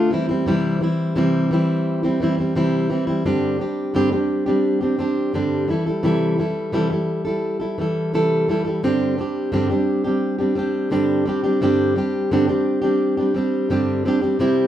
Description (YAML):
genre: pop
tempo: 86 BPM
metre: 4/4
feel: straight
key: unclear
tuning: A4 = 440 Hz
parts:
  - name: fingerpicked plugged-in steel-string acoustic guitar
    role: solo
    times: 0.0-14.7 s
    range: G2 to A4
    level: -18 LUFS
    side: equal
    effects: none
room: moderate large studio reverb, RT60 0.9 s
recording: band playing live in one room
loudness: -18 LUFS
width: side -11 dB against mid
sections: 0.0-3.3 A section; 3.3-14.4 B section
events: none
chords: 0.1 C; 3.3 Gsus4; 5.7 C6; 8.8 Gsus4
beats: | 0.47 1.16 1.86 2.56 | 3.25 3.95 4.64 5.34 | 6.04 6.74 7.43 8.13 | 8.82 9.52 10.22 10.92 | 11.61 12.31 13.01 13.70 | 14.40